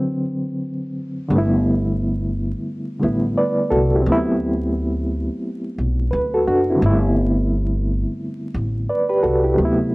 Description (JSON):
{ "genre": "lo-fi hip hop", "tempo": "87 BPM", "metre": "4/4", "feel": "swing 62% on 16ths", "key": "G major", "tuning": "A4 = 439 Hz", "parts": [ { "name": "bright reed electric piano", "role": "accompaniment", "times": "0.0-9.9 s", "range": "C3 to D5", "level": "-19 LUFS", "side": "equal", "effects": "fast tremolo, cassette tape, low-pass filter" }, { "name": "upright bass", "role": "bass", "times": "1.3-9.9 s", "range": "F#1 to D2", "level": "-21 LUFS", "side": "equal", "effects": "none" } ], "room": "moderate studio reverb, RT60 0.6 s", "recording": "vinyl crackle, low-pass filter", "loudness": "-18 LUFS", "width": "side -23 dB against mid", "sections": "0.0-1.3 A section; 1.3-9.9 B section", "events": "reed electric piano solo 0.0-1.3; filter sweep 0.0-1.3", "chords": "0.0 D6; 1.3 G69; 4.1 D13; 6.8 G69" }